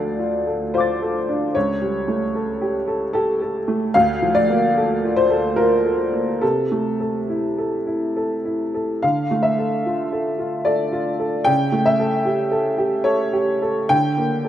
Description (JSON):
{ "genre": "neoclassical minimalist piano", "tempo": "68-76 BPM", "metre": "3/4", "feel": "rubato", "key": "D minor", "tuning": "A4 = 440 Hz", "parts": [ { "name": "clear upright piano", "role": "solo", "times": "0.0-14.5 s", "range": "C#2 to A6", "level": "-18 LUFS", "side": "equal", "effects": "none" } ], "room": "moderate lush hall reverb, RT60 3.0 s", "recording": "rough home demo mix", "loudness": "-18 LUFS", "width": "side -11 dB against mid", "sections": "0.0-14.5 A section", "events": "none", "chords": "0.0 Dm; 1.5 A7/C#; 3.9 Bbmaj7/D; 6.4 C6; 9.0 Dm; 11.5 A7/C#; 13.9 Bb/D", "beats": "0.74 | 1.55 2.34 3.14 | 3.94 4.76 5.57 | 6.41 7.28 8.16 | 9.03 9.86 10.68 | 11.48 12.27 13.06 | 13.91" }